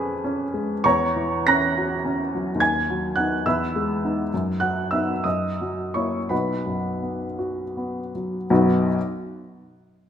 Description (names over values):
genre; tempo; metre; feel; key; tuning
classical, romantic character piece for solo piano; 52-73 BPM (dotted quarters); 6/8; rubato; B major; A4 = 440 Hz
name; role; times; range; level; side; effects
warm upright piano; solo; 0.0-9.0 s; B1 to A#6; -21 LUFS; equal; none
room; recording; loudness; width
wet recital hall reverb, RT60 1.6 s; minimal, uncompressed stereo recording; -21 LUFS; side -9 dB against mid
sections
0.0-8.5 A section; 8.5-10.1 B section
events
slowing down 3.4-8.5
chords
0.0 C#7/E#; 0.8 F#7/E; 2.6 B/D#; 3.4 Emaj7; 4.3 B/F#; 5.2 F#7; 6.3 B5; 8.5 B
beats
| 0.85 1.76 | 2.60 3.45 | 4.32 5.25 | 6.31 7.39 | 8.50